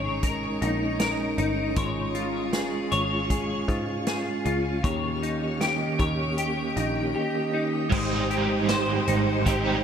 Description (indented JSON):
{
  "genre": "dream pop",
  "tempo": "78 BPM",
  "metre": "4/4",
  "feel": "straight",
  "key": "Ab major",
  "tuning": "A4 = 440 Hz",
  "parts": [
    { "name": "mellow tonewheel organ", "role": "sustained chords", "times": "0.0-9.8 s", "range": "Eb3 to G5", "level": "-30 LUFS", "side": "right 4 dB", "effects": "chorus vibrato, fast rotary speaker" },
    { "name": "clean electric guitar", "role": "arpeggios", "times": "0.0-9.8 s", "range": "Eb3 to Db5", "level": "-27 LUFS", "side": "left 3 dB", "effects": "ensemble chorus, tape echo" },
    { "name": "picked electric bass", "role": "bass", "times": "0.0-9.8 s", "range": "G1 to Ab2", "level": "-32 LUFS", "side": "equal", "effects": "none" },
    { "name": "vintage drum kit", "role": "drums", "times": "0.2-9.6 s", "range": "crash cymbal, hi-hat, kick drum, snare drum, tambourine", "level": "-31 LUFS", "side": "equal", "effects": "none" },
    { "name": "crunchy overdriven guitar", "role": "accompaniment", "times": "7.9-9.8 s", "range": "Ab2 to Eb4", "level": "-26 LUFS", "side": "right 4 dB", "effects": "tremolo, ensemble chorus" }
  ],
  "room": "moderate shimmer reverb, RT60 4.6 s",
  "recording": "none",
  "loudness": "-23 LUFS",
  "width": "side -8 dB against mid",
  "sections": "0.0-7.9 A section; 7.9-9.8 B section",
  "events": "none",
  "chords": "0.0 Eb7sus4/Ab; 1.8 Db/Ab; 4.8 Eb7; 7.9 Abmaj7"
}